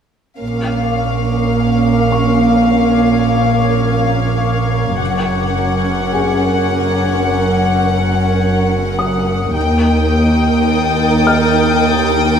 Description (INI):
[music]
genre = cinematic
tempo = 52 BPM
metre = 4/4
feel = straight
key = unclear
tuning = A4 = 440 Hz
[part]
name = warm symphonic violin section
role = melody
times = 0.4-12.4 s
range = F5 to G5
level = -19 LUFS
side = left 6 dB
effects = none
[part]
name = dark symphonic viola section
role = accompaniment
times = 0.4-12.4 s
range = Db4 to Bb4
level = -19 LUFS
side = right 2 dB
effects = none
[part]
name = dark studio double bass section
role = bass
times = 0.4-12.4 s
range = Gb1 to Eb2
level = -18 LUFS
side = right 2 dB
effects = none
[part]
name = warm symphonic cello section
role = bass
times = 0.4-12.4 s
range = Eb2 to Bb2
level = -17 LUFS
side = right 1 dB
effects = none
[part]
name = warm symphonic violin section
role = texture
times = 0.4-12.4 s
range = Db6 to A6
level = -26 LUFS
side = left 4 dB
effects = none
[part]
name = felt-muted upright piano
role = texture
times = 2.1-12.4 s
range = Ab4 to F6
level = -23 LUFS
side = left 4 dB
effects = none
[sound]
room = moderate scoring stage reverb, RT60 2.0 s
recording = dark, warm production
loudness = -12 LUFS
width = side -7 dB against mid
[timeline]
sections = 0.4-12.4 A section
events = none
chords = 0.4 Bbm; 5.0 Gb; 9.6 Eb